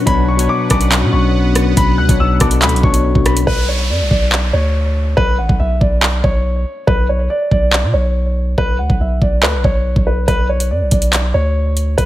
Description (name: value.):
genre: hip hop, drill.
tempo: 141 BPM.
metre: 4/4.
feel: half-time.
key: B minor.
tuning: A4 = 440 Hz.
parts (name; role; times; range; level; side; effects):
dark concert grand piano; melody; 0.0-12.1 s; B4 to F#6; -19 LUFS; equal; tape echo.
overdriven tine electric piano; accompaniment; 0.0-3.5 s; B2 to C#5; -17 LUFS; left 4 dB; phaser.
sweeping resonant pad; sustained chords; 0.0-3.4 s; B3 to F#5; -26 LUFS; right 1 dB; chorus.
long sustained 808-style bass; bass; 0.1-12.1 s; A1 to B2; -16 LUFS; equal; none.
drill drum kit; drums; 0.1-12.1 s; handclaps, hi-hat, kick drum, rim click; -15 LUFS; equal; overdrive.
downlifter; sound effects; 3.5-6.9 s; none; -26 LUFS; right 1 dB; none.
room: digital ambience.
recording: none.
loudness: -12 LUFS.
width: side -14 dB against mid.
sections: 0.0-3.5 A section; 3.5-12.1 B section.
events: break 3.5-10.3.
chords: 0.0 Bmadd9.